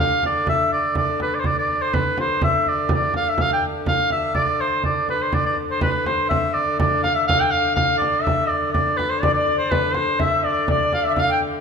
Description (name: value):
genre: medieval dance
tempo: 124 BPM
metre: 2/4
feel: straight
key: D dorian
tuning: A4 = 444 Hz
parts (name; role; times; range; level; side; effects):
- clear shawm; melody; 0.0-11.4 s; B4 to G5; -20 LUFS; equal; none
- rich hurdy-gurdy; drone; 0.0-11.6 s; D3; -29 LUFS; left 3 dB; none
- frame drum; percussion; 0.2-11.5 s; none; -25 LUFS; right 2 dB; none
- bright alto recorder; second line; 9.2-11.4 s; B4 to G5; -23 LUFS; left 6 dB; none
room: wet recital hall reverb, RT60 1.6 s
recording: minimal, uncompressed stereo recording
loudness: -18 LUFS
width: side -6 dB against mid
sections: 0.0-5.3 A section; 5.3-11.6 A section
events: none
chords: none